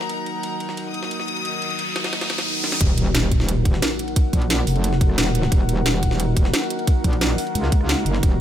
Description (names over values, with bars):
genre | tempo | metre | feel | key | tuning
dark technical drum and bass | 177 BPM | 4/4 | straight | Eb minor | A4 = 443 Hz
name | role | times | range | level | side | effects
deep dark ambient pad | sustained chords | 0.0-8.4 s | Eb4 to Ab5 | -27 LUFS | equal | chorus, built-in reverb, sidechain pumping
jungle sampler-style drum kit | drums | 0.0-8.3 s | ride cymbal, snare drum | -32 LUFS | right 1 dB | high-pass filter on cymbals, high-pass filter on snare
rich chamber string section | texture | 0.0-2.8 s | Eb4 to Eb6 | -27 LUFS | left 4 dB | sidechain pumping
riser and impact | sound effects | 1.3-4.2 s | none | -26 LUFS | equal | none
metallic wobble bass | bass | 2.8-8.4 s | Eb1 to Db2 | -21 LUFS | equal | chorus, tube saturation, sidechain pumping
drum and bass drum kit | drums | 2.8-8.3 s | hi-hat, rim click, snare drum | -24 LUFS | right 1 dB | overdrive
electronic kick drum | drums | 2.8-8.3 s | none | -18 LUFS | equal | overdrive
room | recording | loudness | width
light reverb | none | -18 LUFS | side -11 dB against mid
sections
0.0-2.8 A section; 2.8-8.4 B section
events
riser 1.3-2.8; drop 2.8-8.4; impact 2.8-4.2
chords
0.0 Ebm